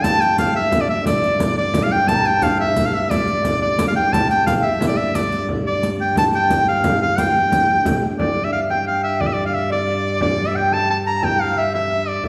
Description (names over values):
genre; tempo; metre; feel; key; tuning
medieval dance; 118 BPM (dotted quarters); 6/8; straight; unclear; A4 = 440 Hz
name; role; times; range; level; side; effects
edgy shawm; melody; 0.0-12.3 s; D5 to Bb5; -22 LUFS; equal; none
mellow hollow tenor recorder; second line; 0.0-12.3 s; D5 to Bb5; -26 LUFS; equal; none
dark viola da gamba; drone; 0.0-12.3 s; G2; -28 LUFS; equal; none
frame drum; percussion; 0.0-12.3 s; none; -26 LUFS; equal; none
riq; percussion; 0.0-8.0 s; none; -28 LUFS; equal; none
room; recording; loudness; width
wet recital hall reverb, RT60 1.6 s; heard from further back in the room; -18 LUFS; mono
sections
0.0-8.2 A section; 8.2-12.3 B section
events
none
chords
none